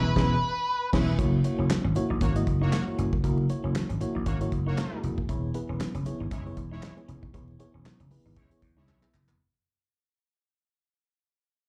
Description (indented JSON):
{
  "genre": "early-eighties boogie funk",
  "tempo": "117 BPM",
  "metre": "4/4",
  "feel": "swing 56% on 16ths",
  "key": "unclear",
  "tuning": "A4 = 437 Hz",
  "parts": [
    { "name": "octave-fuzz lead guitar", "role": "melody", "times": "0.0-0.9 s", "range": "B4", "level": "-30 LUFS", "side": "equal", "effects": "distortion, slapback echo, plate reverb" },
    { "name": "analog synth brass", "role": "second line", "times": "0.0-9.0 s", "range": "G#3 to C#5", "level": "-38 LUFS", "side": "equal", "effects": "chorus, plate reverb, slapback echo" },
    { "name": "FM electric piano with tremolo", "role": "accompaniment", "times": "0.0-9.3 s", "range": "A#3 to E5", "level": "-35 LUFS", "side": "equal", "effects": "plate reverb, slapback echo" },
    { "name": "vintage slap bass", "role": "bass", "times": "0.0-9.4 s", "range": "E1 to E2", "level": "-30 LUFS", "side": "equal", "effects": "none" },
    { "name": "damped 70s drum kit", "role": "drums", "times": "0.2-9.4 s", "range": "crash cymbal, handclaps, hi-hat, kick drum, snare drum", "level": "-33 LUFS", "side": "equal", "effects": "none" },
    { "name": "clean electric guitar", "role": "riff", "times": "1.2-9.4 s", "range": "F#3 to E4", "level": "-43 LUFS", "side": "equal", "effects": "subtle chorus, slapback echo" },
    { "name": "congas", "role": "percussion", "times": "1.7-9.3 s", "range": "none", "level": "-39 LUFS", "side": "equal", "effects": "none" }
  ],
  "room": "light reverb",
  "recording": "live gig heard through the venue's PA, club reverb",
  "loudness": "-28 LUFS",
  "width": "mono",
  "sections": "0.0-1.2 A section; 1.2-9.4 B section",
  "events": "band accent 0.0-1.2; fade-out 1.2-9.4; drum fill 8.9-9.4",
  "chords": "0.0 E6; 1.2 F#7; 5.3 E6"
}